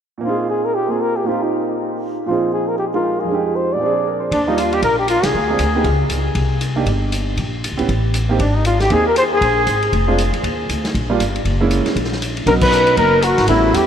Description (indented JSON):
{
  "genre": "jazz, small-group swing and bop",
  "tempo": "235 BPM",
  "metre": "4/4",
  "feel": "swing 60% on 8ths",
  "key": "Eb major",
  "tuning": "A4 = 440 Hz",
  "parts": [
    { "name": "breathy flugelhorn", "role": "melody", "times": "0.2-6.0, 8.4-10.0, 12.5-13.9 s", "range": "D4 to D5", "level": "-18 LUFS", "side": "left 2 dB", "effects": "ping-pong delay" },
    { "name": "warm concert grand piano", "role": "accompaniment", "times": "0.2-13.9 s", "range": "F2 to C5", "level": "-21 LUFS", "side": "right 4 dB", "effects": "none" },
    { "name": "growling trumpet", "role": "second line", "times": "4.3-6.0, 8.4-10.1, 12.5-13.9 s", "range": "D4 to C5", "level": "-22 LUFS", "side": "right 1 dB", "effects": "none" },
    { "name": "upright bass", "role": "bass", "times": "4.3-13.9 s", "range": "F1 to Fb2", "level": "-20 LUFS", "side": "equal", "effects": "none" },
    { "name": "vintage drum kit", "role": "drums", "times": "4.3-13.8 s", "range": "crash cymbal, hi-hat, kick drum, ride cymbal, snare drum", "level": "-24 LUFS", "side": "left 1 dB", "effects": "none" }
  ],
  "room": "moderate huge ambient reverb, RT60 4.0 s",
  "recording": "dreamy mix soaked in reverb",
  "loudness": "-15 LUFS",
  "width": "side -8 dB against mid",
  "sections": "0.2-4.3 A section; 4.3-12.5 B section; 12.5-13.9 C section",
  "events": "band accent 5.2, 12.6",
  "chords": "0.2 Bb7sus4; 1.3 Eb69/Bb; 2.3 Bb7sus4; 3.3 Fm7; 3.8 Bb7; 4.3 Ebmaj9; 5.3 Dm7b5; 5.8 N.C.; 6.4 C5; 7.4 Bbmadd9; 7.9 Am7b5; 8.4 Abmaj7; 9.4 Bb7(no3); 10.4 Ebmaj7; 11.5 Gb7; 12.5 Bmaj7"
}